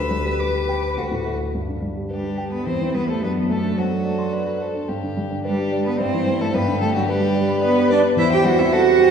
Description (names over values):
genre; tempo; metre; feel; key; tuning
quick classical-period movement for piano quartet; 108 BPM; 3/4; rubato; G major; A4 = 441 Hz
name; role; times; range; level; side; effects
rich violin; melody; 0.0-9.1 s; D4 to E6; -28 LUFS; left 5 dB; none
rich cello; second line; 0.0-9.1 s; F#3 to B4; -21 LUFS; right 4 dB; none
rich violin; second line; 0.0-9.1 s; F#4 to G5; -27 LUFS; left 3 dB; none
dark concert grand piano; accompaniment; 0.0-9.1 s; D2 to C6; -22 LUFS; left 1 dB; none
room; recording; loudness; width
wet concert hall reverb, RT60 2.3 s; recorded in a church or concert hall; -18 LUFS; side -7 dB against mid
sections
0.0-1.5 A section; 1.5-9.1 B section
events
none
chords
0.0 G/D; 1.0 D; 1.5 G; 2.7 C/E; 3.2 D7/F#; 4.9 G; 6.0 C/G; 6.5 G; 8.2 C/E